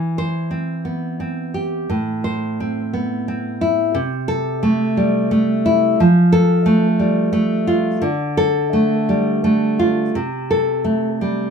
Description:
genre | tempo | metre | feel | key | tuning
romantic piece for solo classical guitar | 87 BPM | 3/4 | rubato | unclear | A4 = 440 Hz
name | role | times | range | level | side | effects
nylon-string guitar | solo | 0.0-11.5 s | A2 to C5 | -16 LUFS | equal | none
room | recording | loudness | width
light reverb | minimal, uncompressed stereo recording | -16 LUFS | side -6 dB against mid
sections
0.0-11.5 A section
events
none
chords
0.0 C/E; 1.9 Am; 4.0 Am/C; 6.0 F; 8.0 Dm; 10.1 Am/C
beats
0.51 1.19 | 1.90 2.60 3.28 | 3.96 4.63 5.31 | 5.99 6.67 7.35 | 8.03 8.73 9.44 | 10.14 10.85

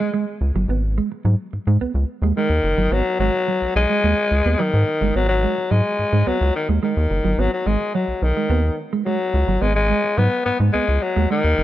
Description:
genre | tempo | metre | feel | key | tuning
funk | 108 BPM | 4/4 | straight | G# minor | A4 = 440 Hz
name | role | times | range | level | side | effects
growling alto saxophone | melody | 0.0-11.6 s | D#3 to B3 | -20 LUFS | left 3 dB | none
mellow electric guitar | riff | 0.0-11.6 s | F#3 to B3 | -25 LUFS | right 5 dB | spring reverb
rubbery square bass | bass | 0.4-11.6 s | F#1 to G#2 | -19 LUFS | equal | none
room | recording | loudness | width
light reverb | dark, warm production | -17 LUFS | side -14 dB against mid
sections
0.0-11.6 A section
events
none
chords
0.0 G#7(no3)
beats
0.14 | 0.70 1.25 1.81 2.37 | 2.92 3.48 4.04 4.59 | 5.15 5.71 6.26 6.82 | 7.38 7.94 8.50 9.06 | 9.62 10.18 10.74 11.30

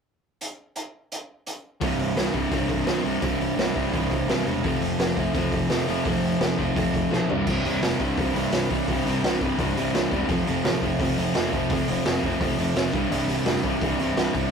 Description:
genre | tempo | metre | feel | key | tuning
punk rock | 170 BPM | 4/4 | straight | unclear | A4 = 440 Hz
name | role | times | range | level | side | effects
raw garage drum kit | drums | 0.4-14.4 s | crash cymbal, hi-hat, kick drum, snare drum, toms | -27 LUFS | right 1 dB | none
distorted electric guitar | riff | 1.8-14.5 s | C2 to F3 | -26 LUFS | right 6 dB | distortion
overdriven semi-hollow guitar | riff | 1.8-14.5 s | C2 to F3 | -26 LUFS | left 6 dB | none
picked electric bass | bass | 1.8-14.5 s | C1 to B1 | -32 LUFS | left 1 dB | none
room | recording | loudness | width
light reverb | rough rehearsal-room recording, warm saturation | -22 LUFS | side -6 dB against mid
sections
0.4-1.8 A section; 1.8-7.5 B section; 7.5-14.5 C section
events
drum fill 7.1-7.5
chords
0.4 N.C.; 1.8 C5; 4.6 F5; 7.3 C5; 10.3 F5; 12.9 C5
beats
| 0.41 0.76 1.11 1.47 | 1.82 2.17 2.52 2.88 | 3.23 3.58 3.94 4.29 | 4.64 4.99 5.35 5.70 | 6.05 6.41 6.76 7.11 | 7.47 7.82 8.17 8.53 | 8.88 9.23 9.58 9.94 | 10.29 10.64 10.99 11.35 | 11.70 12.05 12.40 12.76 | 13.11 13.46 13.82 14.17

